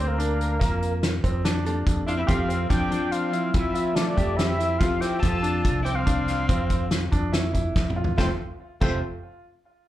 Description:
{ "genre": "progressive instrumental, band music in an uneven meter", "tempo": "143 BPM", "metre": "7/4", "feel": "straight", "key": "F major", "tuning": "A4 = 440 Hz", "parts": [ { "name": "lead with added fifth", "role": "melody", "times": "0.0-9.0 s", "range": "Bb4 to A5", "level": "-29 LUFS", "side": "left 1 dB", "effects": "chorus, slapback echo" }, { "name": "hollow-body jazz guitar", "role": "accompaniment", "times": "0.0-9.0 s", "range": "F3 to Bb4", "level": "-34 LUFS", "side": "right 3 dB", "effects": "slapback echo" }, { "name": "clear concert grand piano", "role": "arpeggios", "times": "0.0-9.0 s", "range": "Bb3 to G4", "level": "-31 LUFS", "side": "right 1 dB", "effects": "slapback echo, tape echo" }, { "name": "mellow fretless electric bass", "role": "bass", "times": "0.0-9.0 s", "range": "F1 to F3", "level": "-26 LUFS", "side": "equal", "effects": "none" }, { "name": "loose indie drum kit", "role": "drums", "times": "0.2-8.9 s", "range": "crash cymbal, hi-hat, kick drum, snare drum, toms", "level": "-26 LUFS", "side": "equal", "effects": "none" }, { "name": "bright alto saxophone", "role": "second line", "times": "2.1-9.0 s", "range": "A3 to F4", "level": "-32 LUFS", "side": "left 3 dB", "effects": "slapback echo" } ], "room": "little or no reverb", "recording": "live gig heard through the venue's PA, club reverb", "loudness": "-22 LUFS", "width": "side -14 dB against mid", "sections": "0.0-8.2 A section; 8.2-9.9 B section", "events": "drum fill 7.8-8.2", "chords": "0.0 Gmadd9; 2.3 Fadd9", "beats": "0.19 0.61 1.03 1.45 1.87 | 2.29 2.71 3.13 3.55 3.97 4.39 4.81 | 5.24 5.66 6.08 6.50 6.92 7.34 7.76 | 8.18 8.60" }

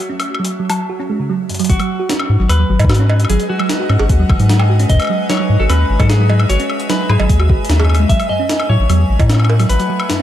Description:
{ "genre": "IDM", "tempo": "150 BPM", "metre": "4/4", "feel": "straight", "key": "unclear", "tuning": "A4 = 444 Hz", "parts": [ { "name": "icy glass pad", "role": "sustained chords", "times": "0.0-10.2 s", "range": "G#3 to G#5", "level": "-24 LUFS", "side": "left 1 dB", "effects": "chorus, built-in reverb" }, { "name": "thumb-piano-like synth pluck", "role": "arpeggios", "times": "0.0-10.2 s", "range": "F#2 to F#4", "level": "-20 LUFS", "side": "right 3 dB", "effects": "chorus, dub echo" }, { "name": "jungle sampler-style drum kit", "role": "drums", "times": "0.0-10.2 s", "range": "cowbell, hi-hat, snare drum, woodblock", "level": "-21 LUFS", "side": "left 1 dB", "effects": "overdrive, dub echo" }, { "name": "clean electric guitar", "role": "melody", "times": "1.7-10.2 s", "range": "F#4 to E5", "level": "-22 LUFS", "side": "left 2 dB", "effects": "vintage 12-bit sampler grit, analog delay" }, { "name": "round analog bass", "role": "bass", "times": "1.7-9.8 s", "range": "G#1 to A2", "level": "-12 LUFS", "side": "equal", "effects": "none" }, { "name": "electronic kick drum", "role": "drums", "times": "1.7-9.3 s", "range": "none", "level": "-14 LUFS", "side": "equal", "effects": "none" } ], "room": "light reverb", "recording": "echo-heavy mix", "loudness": "-12 LUFS", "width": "side -12 dB against mid", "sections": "0.0-1.7 A section; 1.7-10.2 B section", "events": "filter sweep on drum 0.0-1.7; filter sweep on synth arpeggio sound 0.0-1.7; drum fill 1.5", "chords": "0.0 F#m7; 1.7 G#m7; 4.9 C#m7/G#; 8.1 F#m7", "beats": "| 0.10 0.50 0.90 1.30 | 1.70 2.10 2.50 2.90 | 3.30 3.70 4.10 4.50 | 4.90 5.30 5.70 6.10 | 6.50 6.90 7.30 7.70 | 8.10 8.50 8.90 9.30 | 9.70 10.10" }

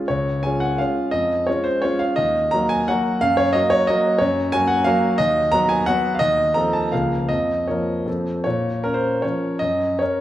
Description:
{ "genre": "classical, romantic triple-time dance for piano with dotted rhythms", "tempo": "145-195 BPM", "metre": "3/4", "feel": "rubato", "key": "Db major, Bb minor from 4.2 s", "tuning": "A4 = 440 Hz", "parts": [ { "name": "clear grand piano", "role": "solo", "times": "0.0-10.2 s", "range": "Db2 to Bb5", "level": "-18 LUFS", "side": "equal", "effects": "none" } ], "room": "wet recital hall reverb, RT60 1.6 s", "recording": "recorded in a church or concert hall", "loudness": "-18 LUFS", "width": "side -13 dB against mid", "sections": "0.1-8.4 A section; 8.4-10.2 B section", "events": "none", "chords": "0.1 Db; 1.1 Db/F; 2.2 Ebm; 3.2 Ebm/Gb; 5.2 B/D#; 6.2 F7/Eb; 6.9 Bbm/Db; 7.3 Bbm/F; 8.1 F; 8.4 Bbm; 9.6 Gb", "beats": "| 0.09 0.44 0.79 | 1.12 1.48 1.84 | 2.17 2.52 2.89 | 3.23 3.56 3.90 | 4.21 4.54 4.87 | 5.19 5.53 5.87 | 6.20 6.55 6.92 | 7.29 7.68 8.07 | 8.45 8.85 9.24 | 9.61 10.00" }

